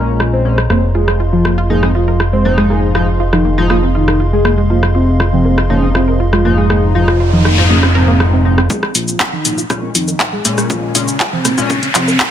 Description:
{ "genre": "melodic techno", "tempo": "120 BPM", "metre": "4/4", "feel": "straight", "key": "Bb minor", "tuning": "A4 = 440 Hz", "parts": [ { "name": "fat analog lead", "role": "melody", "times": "0.0-12.2 s", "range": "C4 to C5", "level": "-17 LUFS", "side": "equal", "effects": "lush chorus, sidechain pumping, tape echo" }, { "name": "dark analog pad", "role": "sustained chords", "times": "0.0-12.3 s", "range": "Ab4 to C6", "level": "-26 LUFS", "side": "right 2 dB", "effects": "chorus, sidechain pumping" }, { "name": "sync-sweep polysynth", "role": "stabs", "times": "0.0-11.8 s", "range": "Ab2 to Eb4", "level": "-20 LUFS", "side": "left 4 dB", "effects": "chorus, sidechain pumping, ping-pong delay" }, { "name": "fat analog bass", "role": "bass", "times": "0.0-12.3 s", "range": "F1 to F2", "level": "-14 LUFS", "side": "equal", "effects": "tube saturation, sidechain pumping, high-pass filter" }, { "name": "techno drum kit", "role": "drums", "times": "0.2-12.3 s", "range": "handclaps, hi-hat, rim click, shaker, toms", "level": "-17 LUFS", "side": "equal", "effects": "high-pass filter on snare, low-pass filter on snare, high-pass filter on perc, low-pass filter on perc, high-pass filter on hats, low-pass filter on hats, high-pass filter on toms, low-pass filter on toms, high-pass filter on room, low-pass filter on room" }, { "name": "wide unison pluck", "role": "arpeggios", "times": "0.7-12.3 s", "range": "F3 to Bb4", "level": "-19 LUFS", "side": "right 2 dB", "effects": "sidechain pumping, ping-pong delay" }, { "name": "noise sweep and riser", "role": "sound effects", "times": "7.0-12.3 s", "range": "none", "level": "-21 LUFS", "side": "left 1 dB", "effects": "none" }, { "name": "electronic kick drum", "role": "drums", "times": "8.7-12.3 s", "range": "none", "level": "-24 LUFS", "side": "equal", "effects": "high-pass filter on kick, high-pass filter on room" } ], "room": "light reverb", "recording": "none", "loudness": "-10 LUFS", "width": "side -10 dB against mid", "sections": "0.0-8.7 A section; 8.7-12.3 B section", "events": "noise sweep 7.0-8.7; build-up 8.7-12.3; riser 8.7-12.3; filter sweep on analog synth lead 8.7-12.3", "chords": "0.0 Bbm7; 0.7 Fm7; 8.7 Bbm7", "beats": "0.20 | 0.70 1.20 1.70 2.20 | 2.70 3.20 3.70 4.20 | 4.70 5.20 5.70 6.20 | 6.70 7.20 7.70 8.20 | 8.70 9.20 9.70 10.20 | 10.70 11.20 11.70 12.20" }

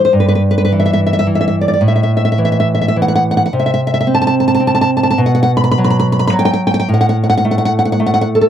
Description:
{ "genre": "romantic piece for solo classical guitar", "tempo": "108 BPM", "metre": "3/4", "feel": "rubato", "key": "unclear", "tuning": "A4 = 440 Hz", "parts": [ { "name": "nylon-string guitar", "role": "solo", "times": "0.0-8.5 s", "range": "G2 to B5", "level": "-11 LUFS", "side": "equal", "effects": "none" } ], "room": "little or no reverb", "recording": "dry, close 1970s-style studio recording", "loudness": "-11 LUFS", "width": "side -10 dB against mid", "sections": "0.0-8.5 A section", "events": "none", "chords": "0.1 Em/G; 1.8 A5; 3.5 N.C.; 5.2 B5; 6.9 N.C.", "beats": "| 0.12 0.70 1.26 | 1.83 2.40 2.96 | 3.52 4.08 4.63 | 5.21 5.79 6.33 | 6.88 7.44 7.99" }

